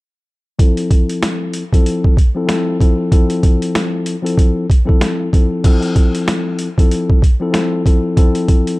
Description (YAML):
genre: hip hop, boom-bap hip-hop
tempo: 95 BPM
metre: 4/4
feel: swing 60% on 16ths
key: F major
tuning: A4 = 440 Hz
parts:
  - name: mellow tine electric piano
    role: accompaniment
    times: 0.6-8.8 s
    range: F3 to A4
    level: -17 LUFS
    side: left 2 dB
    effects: high-pass filter, low-pass filter
  - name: boom bap sampler-style drum kit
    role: drums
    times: 0.6-8.8 s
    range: crash cymbal, hi-hat, kick drum, snare drum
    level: -13 LUFS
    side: equal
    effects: overdrive
room: digital ambience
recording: dark, warm production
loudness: -12 LUFS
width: side -21 dB against mid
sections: 0.6-5.6 A section; 5.6-8.8 B section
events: filter sweep on tine electric piano 0.6-5.6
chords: 0.6 Fmaj7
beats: | 0.59 1.22 1.85 2.49 | 3.12 3.75 4.38 5.01 | 5.64 6.28 6.91 7.54 | 8.17